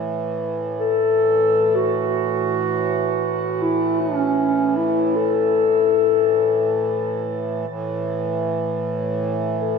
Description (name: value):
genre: world meditative, free-time meditation music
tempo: free time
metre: none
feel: none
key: A major pentatonic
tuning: A4 = 440 Hz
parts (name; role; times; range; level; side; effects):
- hand-pumped harmonium; drone; 0.0-9.8 s; A2 to E3; -24 LUFS; right 2 dB; none
- dark clarinet; melody; 0.8-9.8 s; C#4 to A4; -18 LUFS; left 2 dB; shimmer reverb, tape echo
room: wet echo chamber reverb, RT60 2.2 s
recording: echo-heavy mix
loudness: -18 LUFS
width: side -5 dB against mid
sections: 0.0-9.8 A section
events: none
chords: none